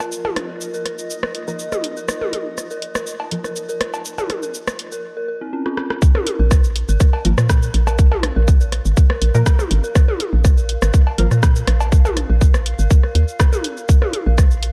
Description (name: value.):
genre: minimal techno.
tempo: 122 BPM.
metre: 4/4.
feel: straight.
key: unclear.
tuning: A4 = 439 Hz.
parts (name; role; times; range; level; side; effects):
dark detuned synth bell; riff; 0.0-14.3 s; C4 to Bb4; -32 LUFS; equal; chorus, phaser, sidechain pumping, digital delay.
punchy analog drum machine; drums; 0.0-14.7 s; cabasa, hi-hat, rim click; -29 LUFS; equal; none.
techno drum kit; percussion; 0.0-14.5 s; cowbell, rim click, toms; -27 LUFS; equal; dub echo.
granular cloud pad; texture; 0.0-14.7 s; F4 to F5; -36 LUFS; equal; built-in reverb, sidechain pumping.
filtered dub chord stab; stabs; 1.5-3.4, 7.2-11.3 s; F3 to Bb4; -29 LUFS; equal; phaser, ensemble chorus, dub echo.
electronic kick drum; drums; 6.0-14.5 s; none; -15 LUFS; equal; none.
hollow knocking FM bass; bass; 6.4-14.7 s; Ab1 to Bb2; -19 LUFS; equal; sidechain pumping.
room: little or no reverb.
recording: dark, warm production.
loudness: -17 LUFS.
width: mono.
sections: 0.0-6.0 A section; 6.0-14.7 B section.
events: drum fill 5.7-6.0; drop 6.0-14.7.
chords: 0.0 Bb5.